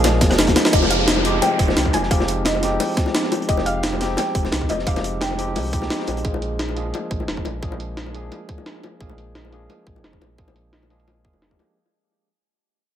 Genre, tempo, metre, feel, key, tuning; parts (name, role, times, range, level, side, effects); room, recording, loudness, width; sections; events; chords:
liquid drum and bass; 174 BPM; 4/4; swing 54% on 16ths; A4 = 440 Hz
soft round pluck; melody; 0.0-5.7 s; Eb5 to Ab5; -26 LUFS; left 1 dB; lush chorus, analog delay
bright tine electric piano; accompaniment; 0.0-11.8 s; F3 to Ab4; -26 LUFS; equal; medium stereo tremolo, analog delay
ethereal airy pad; sustained chords; 0.0-0.7 s; Bb3 to F5; -34 LUFS; left 1 dB
sub bass with octave; bass; 0.0-11.6 s; F1 to C2; -26 LUFS; equal
crunchy breakbeat drum kit; drums; 0.0-6.2 s; hi-hat, snare drum; -27 LUFS; equal; high-pass filter on hats, high-pass filter on snare, high-pass filter on room, analog delay
jungle sampler-style drum kit; drums; 0.0-11.7 s; hi-hat, rim click, snare drum; -23 LUFS; right 1 dB; low-pass filter on hats, low-pass filter on snare, low-pass filter on room
bongos; percussion; 0.0-11.7 s; -28 LUFS; left 4 dB; analog delay
electronic kick drum; drums; 0.2-11.6 s; -22 LUFS; equal; overdrive
downlifter; sound effects; 0.7-3.5 s; -24 LUFS; equal
moderate spring reverb, RT60 1.5 s, small room ambience; echo-heavy mix; -18 LUFS; side -10 dB against mid
0.7-11.8 A section
drum fill 0.6; fade-out 0.7-11.8
0.0 Bb7; 0.7 Fm9; 6.2 Bb7